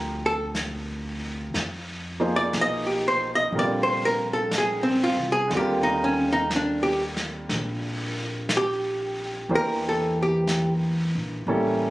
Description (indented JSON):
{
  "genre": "jazz ballad",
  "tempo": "60 BPM",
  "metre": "4/4",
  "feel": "swing 66% on 8ths",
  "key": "unclear",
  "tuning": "A4 = 440 Hz",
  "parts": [
    { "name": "archtop guitar, miked and amplified", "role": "melody", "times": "0.0-10.7 s", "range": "C4 to Eb5", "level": "-23 LUFS", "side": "equal", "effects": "none" },
    { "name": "clear grand piano", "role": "accompaniment", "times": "0.0-11.9 s", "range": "D3 to C5", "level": "-29 LUFS", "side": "right 1 dB", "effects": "none" },
    { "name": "upright bass", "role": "bass", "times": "0.0-11.9 s", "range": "A1 to F2", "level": "-31 LUFS", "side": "equal", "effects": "none" },
    { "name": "vintage brush drum kit", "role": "drums", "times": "0.5-11.9 s", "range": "brushed snare drum, hi-hat, snare drum", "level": "-32 LUFS", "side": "equal", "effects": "none" }
  ],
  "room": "light reverb",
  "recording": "recorded on a phone in the room, studio ambience",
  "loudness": "-22 LUFS",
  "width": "side -17 dB against mid",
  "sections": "0.0-11.9 A section",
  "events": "hollow-body jazz guitar solo 0.0-11.9",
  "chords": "0.0 Gm11; 1.5 Fm7; 3.5 Bb69; 5.5 Ebmaj7; 9.5 Em7b5"
}